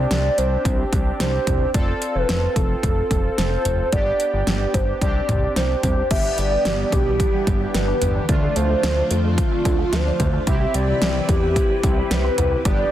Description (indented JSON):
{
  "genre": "synth-pop",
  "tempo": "110 BPM",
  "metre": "4/4",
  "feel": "straight",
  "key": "unclear",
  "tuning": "A4 = 439 Hz",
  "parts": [
    { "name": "hollow clarinet-like synth lead", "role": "melody", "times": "0.0-12.9 s", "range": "F4 to E5", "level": "-23 LUFS", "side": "right 1 dB", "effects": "chorus, phaser, digital delay" },
    { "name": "analog synth brass", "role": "accompaniment", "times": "0.0-12.9 s", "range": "A3 to A4", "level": "-27 LUFS", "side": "equal", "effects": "chorus" },
    { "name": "fat analog bass", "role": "bass", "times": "0.0-12.8 s", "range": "F1 to F2", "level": "-23 LUFS", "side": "equal", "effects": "none" },
    { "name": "pop drum kit", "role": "drums", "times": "0.1-12.8 s", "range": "crash cymbal, hi-hat, kick drum, snare drum, toms", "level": "-22 LUFS", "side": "equal", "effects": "overdrive" },
    { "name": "phased string machine", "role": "sustained chords", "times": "6.1-12.9 s", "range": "C3 to B4", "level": "-30 LUFS", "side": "left 1 dB", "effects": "ensemble chorus, phaser" },
    { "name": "resonant blip pluck", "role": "arpeggios", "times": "6.1-12.9 s", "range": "G3 to D4", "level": "-31 LUFS", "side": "right 2 dB", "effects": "phaser, digital delay" }
  ],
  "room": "light reverb",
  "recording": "dense, heavily limited modern master",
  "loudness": "-18 LUFS",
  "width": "side -12 dB against mid",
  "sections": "0.0-6.1 A section; 6.1-12.9 B section",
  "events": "none",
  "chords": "0.0 Csus2; 1.7 F; 3.9 G; 5.0 Csus2; 6.1 G6; 8.3 Dm7; 10.5 Cmaj7"
}